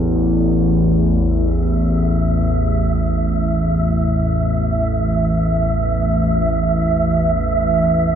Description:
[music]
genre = dark ambient drone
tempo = free time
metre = none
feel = none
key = unclear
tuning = A4 = 440 Hz
[part]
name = dark analog pad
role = sustained chords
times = 0.0-8.2 s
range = A3 to E5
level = -24 LUFS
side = right 2 dB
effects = chorus
[part]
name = analog drone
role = drone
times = 0.0-8.2 s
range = A1 to E2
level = -16 LUFS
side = equal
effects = chorus
[part]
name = wind-like tuned noise texture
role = texture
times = 1.7-8.2 s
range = E5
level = -21 LUFS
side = right 3 dB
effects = built-in reverb
[sound]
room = moderate huge ambient reverb, RT60 8.1 s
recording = none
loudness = -15 LUFS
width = side -8 dB against mid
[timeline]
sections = 0.0-8.2 A section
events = none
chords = 0.0 A5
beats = free time

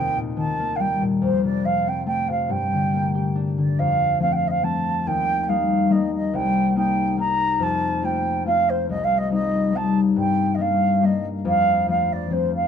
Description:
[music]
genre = celtic folk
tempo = 141 BPM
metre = 3/4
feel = swing 53% on 8ths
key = unclear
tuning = A4 = 439 Hz
[part]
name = mellow wooden flute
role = melody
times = 0.0-12.7 s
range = C5 to Bb5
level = -22 LUFS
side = right 3 dB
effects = none
[part]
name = concert harp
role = accompaniment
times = 0.0-12.7 s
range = C2 to G4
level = -22 LUFS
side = left 4 dB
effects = none
[sound]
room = light reverb, small room ambience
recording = dry, close 1970s-style studio recording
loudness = -19 LUFS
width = side -8 dB against mid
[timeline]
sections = 0.0-3.8 A section; 3.8-12.7 B section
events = none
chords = 0.0 Eb; 1.2 F; 2.5 Gm; 3.8 F; 5.1 Eb; 6.3 Cm7; 7.6 F; 8.9 Cm; 10.2 Gm; 11.4 F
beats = 0.37 0.80 | 1.23 1.65 2.08 | 2.50 2.93 3.36 | 3.78 4.21 4.63 | 5.06 5.49 5.91 | 6.34 6.76 7.19 | 7.61 8.04 8.46 | 8.89 9.32 9.74 | 10.17 10.60 11.02 | 11.45 11.88 12.30

